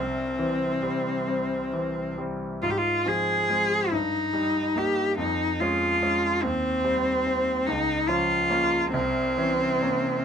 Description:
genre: classical, romantic duo for cello and grand piano.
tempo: 42-49 BPM (dotted quarters).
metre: 6/8.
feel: rubato.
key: unclear.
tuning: A4 = 440 Hz.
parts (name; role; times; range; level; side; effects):
clear cello; melody; 0.0-10.2 s; C4 to Ab4; -24 LUFS; equal; none.
bright concert grand piano; accompaniment; 0.0-10.2 s; C2 to Eb4; -29 LUFS; equal; none.
room: little or no reverb.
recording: close, detailed microphones.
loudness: -23 LUFS.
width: side -7 dB against mid.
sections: 0.0-10.2 A section.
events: none.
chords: 0.0 C; 2.6 Fm/Ab; 3.9 Eb/G; 5.2 Db/F; 6.4 Cm/Eb; 7.7 Bbm/Db; 8.9 C7b9.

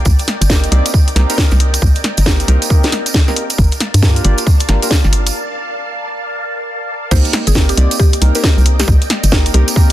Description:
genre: UK garage, two-step garage.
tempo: 136 BPM.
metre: 4/4.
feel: swing 62% on 16ths.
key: C minor.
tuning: A4 = 440 Hz.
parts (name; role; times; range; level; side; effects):
soft string machine; sustained chords; 0.0-9.9 s; Bb3 to A5; -25 LUFS; equal; phaser, ensemble chorus, sidechain pumping.
hollow knocking FM bass; bass; 0.0-9.6 s; G1 to G2; -12 LUFS; equal; none.
electronic kick drum; drums; 0.1-9.9 s; none; -12 LUFS; equal; small room ambience.
tambourine; percussion; 0.1-9.9 s; none; -24 LUFS; right 4 dB; none.
garage drum kit; drums; 0.2-9.9 s; crash cymbal, hi-hat, snare drum; -17 LUFS; equal; small room ambience.
deep mellow chord stab; stabs; 0.5-9.9 s; Bb3 to D5; -22 LUFS; equal; chorus, vintage 12-bit sampler grit, ping-pong delay.
mallet-like synth pluck; melody; 7.1-9.8 s; G4 to C5; -24 LUFS; left 2 dB; chorus, phaser, ping-pong delay.
room: little or no reverb.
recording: dense, heavily limited modern master.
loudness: -11 LUFS.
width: side -14 dB against mid.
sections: 0.0-7.1 A section; 7.1-9.9 B section.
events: break 5.3-7.1; drop 7.1-9.9.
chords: 0.1 Cm7; 3.6 Gm7; 7.1 Cm7.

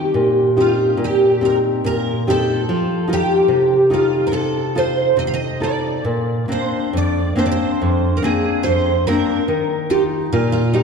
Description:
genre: fado.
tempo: 71 BPM.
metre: 2/4.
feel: rubato.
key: Eb major.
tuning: A4 = 440 Hz.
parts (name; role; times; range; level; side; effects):
picked twelve-string acoustic guitar; melody; 0.0-10.8 s; Eb4 to F5; -18 LUFS; right 1 dB; ensemble chorus.
nylon-string guitar; accompaniment; 0.0-10.8 s; F2 to A4; -18 LUFS; left 1 dB; none.
room: wet concert hall reverb, RT60 2.2 s.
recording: dark, warm production.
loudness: -15 LUFS.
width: side -5 dB against mid.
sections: 0.0-10.8 A section.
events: none.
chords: 0.0 Eb6; 2.7 F7; 6.1 Bbadd9; 9.5 Ebadd9.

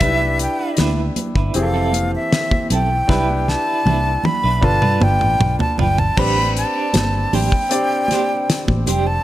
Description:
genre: lush 1970s-style soul.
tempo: 78 BPM.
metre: 4/4.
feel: straight.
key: unclear.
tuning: A4 = 440 Hz.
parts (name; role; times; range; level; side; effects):
breathy silver concert flute; melody; 0.0-9.2 s; E5 to B5; -20 LUFS; equal; none.
clear baby grand piano; accompaniment; 0.0-9.2 s; E3 to D5; -24 LUFS; left 1 dB; none.
clean electric guitar; riff; 0.0-9.1 s; C4 to D5; -27 LUFS; right 7 dB; tremolo.
vintage muted fingered electric bass; bass; 0.0-9.2 s; F1 to G2; -20 LUFS; equal; none.
damped 70s drum kit; drums; 0.0-9.1 s; crash cymbal, hi-hat, kick drum, snare drum, toms; -20 LUFS; equal; none.
congas; percussion; 0.0-9.0 s; none; -27 LUFS; right 2 dB; none.
room: light reverb, small room ambience.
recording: none.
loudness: -15 LUFS.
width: side -14 dB against mid.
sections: 0.0-6.2 A section; 6.2-9.2 B section.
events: flute solo 0.0-6.2; drum fill 3.1-6.2.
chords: 0.0 Cmaj9; 1.6 Fmaj7; 3.1 Cmaj9; 4.6 G7; 6.2 Am11.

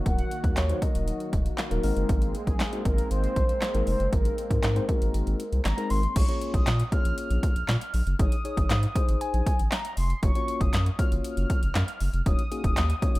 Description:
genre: dance-pop.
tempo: 118 BPM.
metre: 4/4.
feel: straight.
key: unclear.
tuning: A4 = 440 Hz.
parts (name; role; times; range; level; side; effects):
warm analog pad; sustained chords; 0.0-6.1 s; Eb3 to Gb4; -36 LUFS; right 1 dB; wide subtle chorus, sidechain pumping.
mellow horn-like synth lead; melody; 0.1-13.2 s; Ab4 to F6; -33 LUFS; left 1 dB; chorus, ping-pong delay.
mellow tine electric piano; accompaniment; 0.1-13.2 s; Gb3 to Db5; -33 LUFS; left 3 dB; sidechain pumping.
saturated sub bass; bass; 0.1-13.2 s; Eb1 to Bb2; -26 LUFS; equal; sidechain pumping.
house drum kit; drums; 0.1-13.2 s; crash cymbal, handclaps, hi-hat, kick drum, snare drum; -26 LUFS; equal; none.
room: little or no reverb.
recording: rough home demo mix.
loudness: -23 LUFS.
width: side -18 dB against mid.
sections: 0.0-6.2 A section; 6.2-13.2 B section.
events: kick muted 5.1-6.2.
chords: 0.0 Ebm; 1.8 Abadd9; 6.2 Bbm7; 8.2 Absus4; 10.2 Gbmaj7; 12.3 Ebm7.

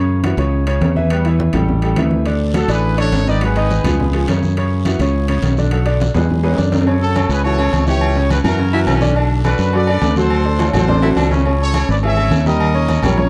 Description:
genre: latin, salsa.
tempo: 209 BPM.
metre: 4/4.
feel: straight.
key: unclear.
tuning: A4 = 440 Hz.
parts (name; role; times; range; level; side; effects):
bright grand piano; accompaniment; 0.0-13.3 s; C#3 to E5; -22 LUFS; equal; none.
modern bright fingered electric bass; bass; 0.0-13.3 s; G#1 to F#2; -19 LUFS; equal; none.
congas; percussion; 0.1-13.3 s; none; -25 LUFS; equal; none.
timbales and agogo bells; percussion; 0.2-13.2 s; none; -26 LUFS; equal; none.
guiro; percussion; 2.3-13.3 s; none; -38 LUFS; equal; none.
clear trumpet section; melody; 2.5-4.3, 7.0-13.3 s; F#4 to E5; -24 LUFS; equal; none.
warm baritone saxophone; second line; 8.7-11.5 s; C#4 to E4; -27 LUFS; equal; none.
room: light reverb.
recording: dark, warm production.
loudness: -16 LUFS.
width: mono.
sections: 0.0-6.9 A section; 6.9-13.3 B section.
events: drum fill 6.1-6.9, 10.6-11.5.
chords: 0.0 F#5; 1.1 Em; 1.7 A5; 2.3 Dmaj7; 3.4 G#m7; 4.0 C#7; 4.6 F#5; 5.7 Bm7; 6.3 E7; 6.9 F#m7; 8.6 F#7; 9.2 Bm7; 10.3 D7; 11.5 C#m; 12.6 D#7.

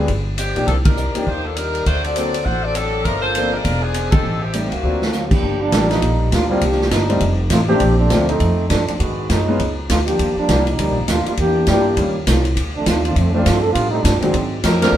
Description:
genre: jazz, big band swing.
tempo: 202 BPM.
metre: 4/4.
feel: swing 61% on 8ths.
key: G minor.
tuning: A4 = 440 Hz.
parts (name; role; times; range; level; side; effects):
clear saxophone section; melody; 0.0-5.3, 14.6-15.0 s; C3 to F#5; -21 LUFS; left 1 dB; none.
clear concert grand piano; accompaniment; 0.0-14.9 s; G2 to A4; -22 LUFS; left 1 dB; none.
upright bass; bass; 0.0-15.0 s; E1 to A2; -20 LUFS; equal; none.
swinging big-band drum kit; drums; 0.1-14.9 s; crash cymbal, hi-hat, kick drum, ride cymbal, snare drum; -21 LUFS; equal; none.
clear trombone section; second line; 5.1-14.6 s; D3 to A4; -20 LUFS; right 1 dB; none.
room: wet stone room reverb, RT60 1.3 s.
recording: band playing live in one room.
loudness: -15 LUFS.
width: side -11 dB against mid.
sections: 0.0-5.4 A section; 5.4-14.9 B section.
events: band accent 0.8, 4.1, 14.8; drum fill 4.8; trombone section solo 5.4-14.9.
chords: 0.1 G7; 0.7 Cm9; 1.9 D7b13; 3.0 Gm11; 3.6 E7b9; 4.2 Am7b5; 4.8 D7alt; 5.4 Gm7; 6.6 Cm9; 7.2 F9; 7.8 Bbmaj9; 9.0 Abm7; 9.6 C#9; 10.2 Ebmaj9; 11.4 Em7b5; 12.0 Eb9; 12.6 Dm7; 13.7 Am7b5; 14.3 Ab7#11.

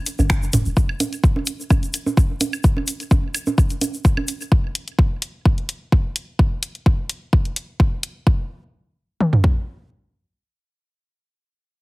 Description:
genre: minimal techno.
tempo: 128 BPM.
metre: 4/4.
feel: straight.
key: unclear.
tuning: A4 = 440 Hz.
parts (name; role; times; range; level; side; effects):
punchy analog drum machine; drums; 0.1-8.1 s; finger snaps, hi-hat; -24 LUFS; left 1 dB; overdrive, studio reverb.
egg shaker; percussion; 0.1-4.5 s; none; -32 LUFS; left 1 dB; none.
punchy sub bass; bass; 0.2-0.7 s; Eb1 to G1; -21 LUFS; equal; sidechain pumping.
electronic congas, toms and woodblock; percussion; 0.2-4.3 s; none; -25 LUFS; right 3 dB; studio reverb, digital delay.
house drum kit; drums; 0.3-9.6 s; kick drum, toms; -16 LUFS; equal; studio reverb.
room: little or no reverb.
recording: heavily compressed radio sound, multiband compression.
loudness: -18 LUFS.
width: side -23 dB against mid.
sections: 0.0-8.3 A section; 8.3-11.8 B section.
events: none.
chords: none.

